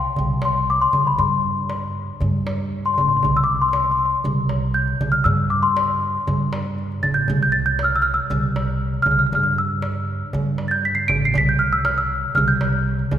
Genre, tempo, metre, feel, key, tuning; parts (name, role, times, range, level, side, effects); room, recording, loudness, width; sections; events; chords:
Arabic maqam ensemble; 118 BPM; 4/4; straight; C maqam ajam; A4 = 439 Hz
small celesta; melody; 0.0-13.2 s; B5 to D7; -20 LUFS; left 2 dB
upright bass; bass; 0.0-13.2 s; A1 to G2; -23 LUFS; right 1 dB
darbuka; percussion; 0.2-13.2 s; -25 LUFS; right 2 dB
wet concert hall reverb, RT60 2.2 s; recorded in a church or concert hall; -18 LUFS; side -10 dB against mid
0.2-13.2 A section